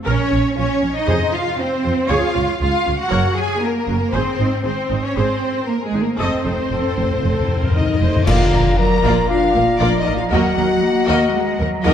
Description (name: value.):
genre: cinematic, heroic adventure film score.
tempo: 117 BPM.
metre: 4/4.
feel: straight.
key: unclear.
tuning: A4 = 441 Hz.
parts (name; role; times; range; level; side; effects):
rich studio violin section; melody; 0.1-11.9 s; Ab4 to Bb5; -27 LUFS; left 5 dB; none.
warm symphonic violin section; second line; 0.1-11.9 s; F4 to Bb5; -26 LUFS; left 4 dB; none.
warm symphonic viola section; accompaniment; 0.1-11.9 s; Bb3 to Eb5; -25 LUFS; equal; none.
rich symphonic cello section; bass; 0.1-11.9 s; D3 to Ab4; -21 LUFS; right 3 dB; none.
rich symphonic double bass section; bass; 0.1-11.9 s; F1 to F2; -22 LUFS; right 3 dB; none.
timpani; percussion; 0.1-1.8, 6.2-8.2 s; F2 to Bb2; -22 LUFS; left 2 dB; none.
cymbal swell, clash cymbals and concert bass drum; percussion; 4.1-9.3 s; none; -24 LUFS; equal; none.
mellow hollow silver concert flute; second line; 7.8-11.9 s; D5 to Bb5; -24 LUFS; left 3 dB; none.
mellow French horn section; sustained chords; 7.8-11.9 s; D4 to Bb4; -20 LUFS; left 4 dB; none.
mellow clarinet; second line; 8.3-11.9 s; D5 to Eb5; -28 LUFS; left 4 dB; none.
warm oboe; second line; 8.3-11.9 s; Bb5; -29 LUFS; right 3 dB; none.
room: wet scoring stage reverb, RT60 1.6 s.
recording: dark, warm production.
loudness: -15 LUFS.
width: side -9 dB against mid.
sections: 0.0-8.3 A section; 8.3-11.9 B section.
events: timpani fill 6.2-8.3; band accent 8.3-8.8.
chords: 0.1 Bbm; 1.1 Fm; 2.1 Db; 3.1 Gb; 4.1 Ab; 6.2 F7; 8.3 Bb; 10.3 Ebm.